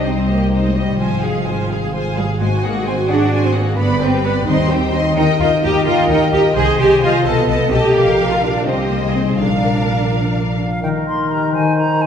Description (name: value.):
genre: classical, dramatic, fast romantic movement for symphony orchestra.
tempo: 86 BPM (dotted quarters).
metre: 6/8.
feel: straight.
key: C minor, Eb major from 5.2 s.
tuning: A4 = 441 Hz.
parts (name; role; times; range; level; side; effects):
warm studio violin section; melody; 0.0-10.6 s; C5 to C6; -26 LUFS; left 2 dB; none.
clear symphonic violin section; second line; 0.0-10.6 s; Gb4 to F5; -23 LUFS; left 3 dB; none.
warm symphonic viola section; accompaniment; 0.0-10.6 s; Eb4 to C5; -23 LUFS; right 2 dB; none.
concert harp; arpeggios; 0.0-12.1 s; G2 to F5; -20 LUFS; left 4 dB; none.
warm symphonic cello section; bass; 0.0-10.6 s; F3 to Ab4; -18 LUFS; right 2 dB; none.
warm symphonic double bass section; bass; 0.0-10.6 s; G1 to Eb2; -22 LUFS; right 2 dB; none.
bright silver concert flute; second line; 10.6-12.1 s; F5 to C6; -21 LUFS; equal; none.
bright clarinet; second line; 10.8-12.1 s; Eb4; -23 LUFS; right 1 dB; none.
warm oboe; second line; 10.8-12.1 s; Bb4 to C5; -24 LUFS; equal; none.
mellow bassoon; accompaniment; 10.8-12.1 s; Eb3; -22 LUFS; left 1 dB; none.
room: wet recital hall reverb, RT60 1.8 s.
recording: heard from further back in the room.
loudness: -14 LUFS.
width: side -8 dB against mid.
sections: 0.0-10.8 A section; 10.8-12.1 B section.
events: none.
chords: 0.0 Cm; 1.0 Fm/Ab; 2.4 Ab7; 3.8 G; 4.5 Cm/Eb; 5.2 Eb; 6.6 Ab/C; 7.3 B7; 8.0 Bb; 8.7 Cm; 9.4 Bb; 10.8 Eb; 11.5 Abadd9/Eb.